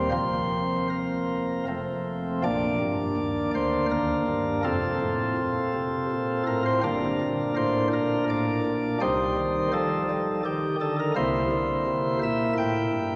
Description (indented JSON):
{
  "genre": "classical, chorale-style piece for pipe organ",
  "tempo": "82 BPM",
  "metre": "3/4",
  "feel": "rubato",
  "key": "Bb major",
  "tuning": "A4 = 440 Hz",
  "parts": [
    { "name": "chamber organ, sparkling flutes", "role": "solo", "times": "0.0-13.2 s", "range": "F1 to G5", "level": "-26 LUFS", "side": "equal", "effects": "none" }
  ],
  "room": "wet church reverb, RT60 3.2 s",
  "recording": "nothing above 10.8 kHz",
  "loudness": "-26 LUFS",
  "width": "mono",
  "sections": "0.0-2.4 A section; 2.4-13.2 B section",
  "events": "none",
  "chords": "0.1 Fsus4; 1.7 F; 2.4 Bb; 4.6 F; 6.8 Gm; 9.0 Cm; 11.2 C7",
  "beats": "| 0.12 0.90 1.67 | 2.44 3.17 3.91 | 4.65 5.38 6.11 | 6.84 7.57 8.29 | 9.02 9.74 10.45 | 11.16 11.87 12.58"
}